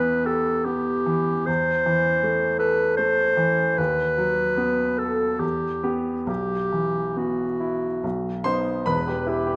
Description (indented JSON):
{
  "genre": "classical, romantic duo for clarinet and grand piano",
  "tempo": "67-82 BPM",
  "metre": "3/4",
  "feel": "rubato",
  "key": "E minor",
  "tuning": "A4 = 440 Hz",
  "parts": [
    { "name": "clear clarinet", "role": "melody", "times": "0.0-9.6 s", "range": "F#4 to C5", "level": "-25 LUFS", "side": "equal", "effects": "none" },
    { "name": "clear baby grand piano", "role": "accompaniment", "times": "0.0-9.6 s", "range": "E1 to C6", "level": "-27 LUFS", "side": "equal", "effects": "none" }
  ],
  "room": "moderate recital hall reverb, RT60 1.7 s",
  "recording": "close, detailed microphones",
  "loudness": "-23 LUFS",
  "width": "mono",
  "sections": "0.0-8.9 A section",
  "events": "none",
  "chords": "0.0 Em; 1.5 Am/E; 3.8 B7/D#; 5.4 Em; 6.3 Bsus4; 8.0 B; 8.9 Em",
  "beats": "0.65 | 1.48 2.23 2.99 | 3.78 4.59 5.42 | 6.28 7.17 8.04 | 8.89"
}